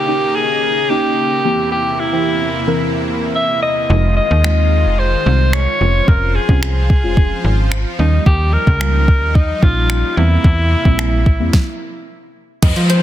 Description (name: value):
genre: dance-pop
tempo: 110 BPM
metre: 4/4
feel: straight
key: unclear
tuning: A4 = 440 Hz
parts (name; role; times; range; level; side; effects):
- bright alto saxophone; melody; 0.0-12.1 s; Eb4 to E5; -18 LUFS; left 1 dB; tape echo
- supersaw pad; sustained chords; 0.0-13.0 s; E2 to C5; -24 LUFS; equal; sidechain pumping
- deep mellow chord stab; accompaniment; 0.1-11.5 s; E3 to Bb4; -22 LUFS; right 2 dB; chorus, sidechain pumping
- slap-like FM bass; bass; 3.9-13.0 s; F1 to F3; -15 LUFS; equal; sidechain pumping
- smooth R&B drum kit; drums; 4.4-13.0 s; crash cymbal, finger snaps, hi-hat, kick drum, snare drum; -14 LUFS; equal; soft clipping on snare
- mallet-like synth pluck; melody; 12.6-13.0 s; C5 to Eb5; -22 LUFS; left 4 dB; chorus, sidechain pumping
- downlifter; sound effects; 12.6-13.0 s; none; -22 LUFS; equal; none
room: light reverb, digital ambience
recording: dense, heavily limited modern master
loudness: -12 LUFS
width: side -12 dB against mid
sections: 0.0-12.6 A section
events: stop 11.5-12.6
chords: 0.0 Eb7; 1.4 C7/E; 3.9 Fm7; 5.8 Dbmaj7/F; 8.0 Eb7; 10.2 C7